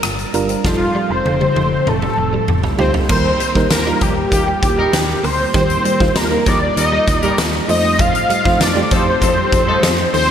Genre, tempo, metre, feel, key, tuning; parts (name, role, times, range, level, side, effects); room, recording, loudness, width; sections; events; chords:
1980s-style pop; 98 BPM; 4/4; straight; A4 = 440 Hz
FM electric piano with tremolo; accompaniment; 0.0-10.3 s; G2 to C5; -22 LUFS; right 5 dB
string machine, cellos; sustained chords; 0.0-10.3 s; F3 to A5; -27 LUFS; left 1 dB
direct-recorded clean electric guitar; riff; 0.0-10.3 s; F3 to Eb4; -28 LUFS; right 3 dB
slap-like FM bass; bass; 0.0-10.3 s; F1 to F2; -22 LUFS; equal
huge arena drum kit; drums; 0.0-10.3 s; crash cymbal, hi-hat, kick drum, rim click, snare drum, toms; -18 LUFS; equal
fat analog lead; melody; 0.7-10.3 s; F4 to F5; -17 LUFS; left 1 dB; ensemble chorus
clear horn section; stabs; 4.0-9.9 s; Eb3 to Bb4; -26 LUFS; left 2 dB
moderate lush hall reverb, RT60 3.2 s; bright 1980s-style digital production; -13 LUFS; side -9 dB against mid
0.0-3.1 A section; 3.1-10.3 B section
drum fill 0.6-3.1
0.0 Gm7; 0.6 F9; 3.1 Eb; 7.7 F7